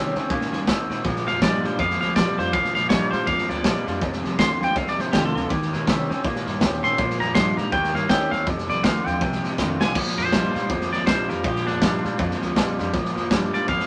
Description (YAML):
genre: rockabilly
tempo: 162 BPM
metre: 4/4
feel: swing 60% on 8ths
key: Bb mixolydian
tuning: A4 = 443 Hz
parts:
  - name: picked steel-string acoustic guitar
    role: accompaniment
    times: 0.0-13.9 s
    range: F2 to G4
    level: -30 LUFS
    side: equal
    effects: none
  - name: electric guitar through a small old amp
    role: riff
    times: 0.0-13.9 s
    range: F2 to C4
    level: -30 LUFS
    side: equal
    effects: none
  - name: upright bass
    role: bass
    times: 0.0-13.9 s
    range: F1 to Db3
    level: -36 LUFS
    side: equal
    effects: none
  - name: raw garage drum kit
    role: drums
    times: 0.2-13.9 s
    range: crash cymbal, hi-hat, kick drum, snare drum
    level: -26 LUFS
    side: equal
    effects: none
  - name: twangy electric guitar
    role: melody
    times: 1.3-13.9 s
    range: D4 to C6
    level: -27 LUFS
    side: equal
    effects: none
room: light reverb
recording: none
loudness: -22 LUFS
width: mono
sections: 0.0-10.0 A section; 10.0-13.9 B section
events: drum fill 9.6-10.0; clean electric guitar solo 10.0-13.9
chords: 0.0 Eb7; 1.0 Bb7; 4.0 F7; 5.5 Eb7; 7.0 Bb7; 7.7 Eb7; 8.5 F7; 10.0 Bb7